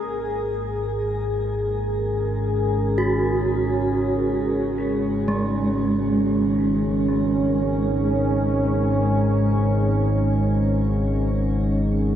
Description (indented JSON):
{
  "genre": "dark ambient drone",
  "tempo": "free time",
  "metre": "none",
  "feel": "none",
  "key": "unclear",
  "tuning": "A4 = 439 Hz",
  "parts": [
    { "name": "deep dark ambient pad", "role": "sustained chords", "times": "0.0-12.2 s", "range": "C#4 to A#4", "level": "-24 LUFS", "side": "right 1 dB", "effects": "chorus, built-in reverb, shimmer reverb" },
    { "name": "analog drone", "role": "drone", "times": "0.2-12.2 s", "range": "G#1 to G#2", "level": "-22 LUFS", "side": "equal", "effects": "chorus" },
    { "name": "gamelan-type bronze metallophone", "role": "arpeggios", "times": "3.0-12.2 s", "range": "G#3 to F#4", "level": "-28 LUFS", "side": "right 2 dB", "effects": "tape echo, shimmer reverb" }
  ],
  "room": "wet huge ambient reverb, RT60 7.8 s",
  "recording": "none",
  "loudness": "-19 LUFS",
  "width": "side -10 dB against mid",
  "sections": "0.0-12.2 A section",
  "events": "none",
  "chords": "0.0 G#sus2",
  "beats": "free time"
}